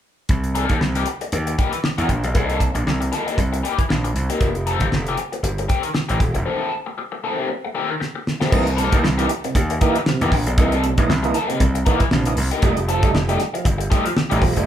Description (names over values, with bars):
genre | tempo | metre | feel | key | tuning
funk | 117 BPM | 4/4 | swing 56% on 16ths | unclear | A4 = 439 Hz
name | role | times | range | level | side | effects
gritty slap bass | bass | 0.3-14.7 s | Eb1 to E2 | -22 LUFS | equal | overdrive
damped 70s drum kit | drums | 0.3-14.7 s | crash cymbal, hi-hat, kick drum, snare drum | -21 LUFS | equal | none
raw garage guitar | accompaniment | 0.5-14.6 s | Eb3 to A4 | -24 LUFS | left 4 dB | wah, overdrive
tonewheel organ | stabs | 8.5-14.7 s | C3 to D#4 | -23 LUFS | right 4 dB | overdrive, slow rotary speaker
room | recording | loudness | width
light reverb | band playing live in one room | -18 LUFS | side -10 dB against mid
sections
0.3-8.5 A section; 8.5-14.7 B section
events
break 6.5-8.5; drum fill 8.0-8.5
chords
0.3 C7#9; 4.4 F9; 8.5 C7#9; 12.6 F9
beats
| 0.30 0.81 1.33 1.84 | 2.35 2.87 3.38 3.90 | 4.41 4.93 5.44 5.96 | 6.47 6.98 7.50 8.01 | 8.52 9.04 9.55 10.06 | 10.57 11.09 11.60 12.11 | 12.62 13.14 13.65 14.16